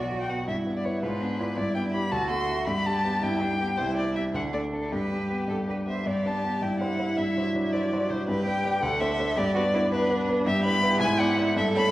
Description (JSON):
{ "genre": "quick classical-period movement for piano trio", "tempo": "109 BPM (dotted quarters)", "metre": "6/8", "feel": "straight", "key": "G major", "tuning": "A4 = 440 Hz", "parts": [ { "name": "rich violin", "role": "melody", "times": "0.0-11.9 s", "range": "G4 to C6", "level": "-28 LUFS", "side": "left 2 dB", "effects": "none" }, { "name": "clear cello", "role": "second line", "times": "0.0-11.9 s", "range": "D4 to C5", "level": "-30 LUFS", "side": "right 3 dB", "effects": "none" }, { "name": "warm concert grand piano", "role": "accompaniment", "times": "0.0-11.9 s", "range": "B1 to E5", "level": "-27 LUFS", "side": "equal", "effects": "none" } ], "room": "wet recital hall reverb, RT60 1.6 s", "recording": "worn, warbling old tape, cassette tape, warbly pitch drift", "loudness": "-24 LUFS", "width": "side -15 dB against mid", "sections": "0.0-6.1 A section; 6.1-11.9 B section", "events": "none", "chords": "0.5 Em/G; 1.0 G#dim7; 1.6 G; 2.1 D9; 2.7 G; 3.8 C; 4.3 D5; 4.9 G; 6.6 C/G; 7.2 D7/G; 8.3 G; 8.8 D5; 9.4 G; 10.5 Em/G; 11.0 E7/G#" }